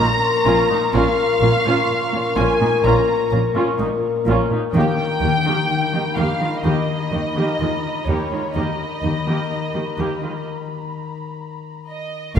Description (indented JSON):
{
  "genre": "cinematic",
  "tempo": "63 BPM",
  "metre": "4/4",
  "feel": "straight",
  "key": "unclear",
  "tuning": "A4 = 439 Hz",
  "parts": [
    { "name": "muted symphonic violin section", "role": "melody", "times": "0.0-12.4 s", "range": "Db5 to Bb5", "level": "-24 LUFS", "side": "equal", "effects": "none" },
    { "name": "muted symphonic viola section", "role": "accompaniment", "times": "0.0-10.3 s", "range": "Ab3 to G4", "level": "-25 LUFS", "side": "right 2 dB", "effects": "none" },
    { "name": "concert harp", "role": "riff", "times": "0.0-12.4 s", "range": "Bb2 to Eb4", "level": "-22 LUFS", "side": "left 6 dB", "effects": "none" },
    { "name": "muted studio cello section", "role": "bass", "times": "0.0-12.4 s", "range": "Bb2 to Eb3", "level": "-25 LUFS", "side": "right 3 dB", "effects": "none" },
    { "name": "muted symphonic double bass section", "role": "bass", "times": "0.0-12.4 s", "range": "Bb1 to Eb2", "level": "-25 LUFS", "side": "right 3 dB", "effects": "none" },
    { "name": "felt-muted upright piano", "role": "texture", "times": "0.0-12.4 s", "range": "Eb4 to F5", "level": "-33 LUFS", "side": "left 1 dB", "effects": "none" },
    { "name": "muted symphonic violin section", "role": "texture", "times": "0.0-12.4 s", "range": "Bb5 to Db6", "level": "-30 LUFS", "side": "left 2 dB", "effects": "none" }
  ],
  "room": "wet concert hall reverb, RT60 2.4 s",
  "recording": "none",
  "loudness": "-17 LUFS",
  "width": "side -8 dB against mid",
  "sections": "0.0-12.4 A section",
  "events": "break 10.5-12.4",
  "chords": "0.0 Bbmadd9; 4.7 Eb"
}